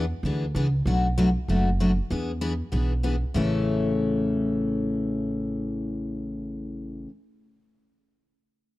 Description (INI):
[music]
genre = acoustic string swing (jazz manouche)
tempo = 193 BPM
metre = 4/4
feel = swing 59% on 8ths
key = A major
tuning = A4 = 439 Hz
[part]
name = picked steel-string acoustic guitar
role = accompaniment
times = 0.0-7.1 s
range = A2 to A4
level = -25 LUFS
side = left 2 dB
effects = none
[part]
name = upright bass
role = bass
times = 0.0-7.0 s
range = F#1 to E2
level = -28 LUFS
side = right 1 dB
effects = none
[sound]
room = little or no reverb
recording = dry, close 1970s-style studio recording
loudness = -23 LUFS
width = side -18 dB against mid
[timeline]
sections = 0.0-3.4 A section; 3.4-5.8 B section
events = none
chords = 0.0 E7; 0.9 Bm7; 2.1 E7; 3.4 A